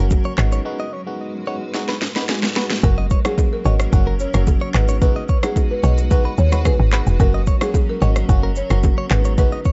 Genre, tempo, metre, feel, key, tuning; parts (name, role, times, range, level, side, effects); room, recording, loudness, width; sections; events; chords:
afrobeats; 110 BPM; 4/4; straight; G# minor; A4 = 440 Hz
barking FM electric piano; accompaniment; 0.0-9.6 s; F#3 to F#4; -30 LUFS; equal; chorus
granular cloud pad; sustained chords; 0.0-9.7 s; F#3 to B4; -34 LUFS; equal; built-in reverb, sidechain pumping
direct-recorded clean electric guitar; riff; 0.0-9.7 s; G#4 to D#5; -32 LUFS; equal; tape echo
woody log drum bass; bass; 0.0-9.5 s; E1 to D#2; -20 LUFS; equal
afro-pop drum kit; drums; 0.1-9.7 s; handclaps, kick drum, rim click, shaker, snare drum; -21 LUFS; equal
bongos and congas; percussion; 0.1-9.5 s; -30 LUFS; equal
buzzing marimba with medium mallets; melody; 2.8-9.5 s; G#4 to D#5; -29 LUFS; equal
digital ambience; dark, warm production, nothing above 7.8 kHz; -18 LUFS; mono
0.0-2.8 A section; 2.8-9.7 B section
break 0.7-2.8; drum fill 1.7-2.8
0.4 G#m7; 2.8 F#; 4.7 G#m7; 7.2 F#; 9.1 G#m7